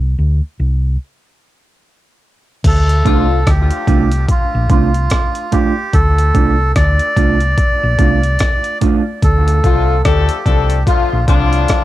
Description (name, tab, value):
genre	dub reggae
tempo	73 BPM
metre	4/4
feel	swing 59% on 16ths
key	D minor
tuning	A4 = 440 Hz
part	hollow-body short-scale fingered electric bass	bass	0.0-11.6 s	Bb1 to D2	-14 LUFS	equal	none
part	breakbeat sampler-style drum kit	drums	2.6-11.8 s	crash cymbal, hi-hat, kick drum, rim click	-15 LUFS	equal	cassette tape
part	melodica	melody	2.7-11.8 s	F4 to D5	-19 LUFS	right 2 dB	cassette tape, dub echo
part	mellow electric guitar	accompaniment	3.0-9.0 s	A3 to F4	-20 LUFS	right 6 dB	vibrato effect, cassette tape, dub echo
part	warm horn section	second line	3.1-3.4, 9.6-11.8 s	A2 to A4	-19 LUFS	left 11 dB	cassette tape, dub echo
room	light reverb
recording	home recording on cassette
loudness	-11 LUFS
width	side -15 dB against mid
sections	0.0-2.6 A section; 2.6-11.8 B section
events	break 0.0-2.6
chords	0.0 Csus2; 2.6 Dm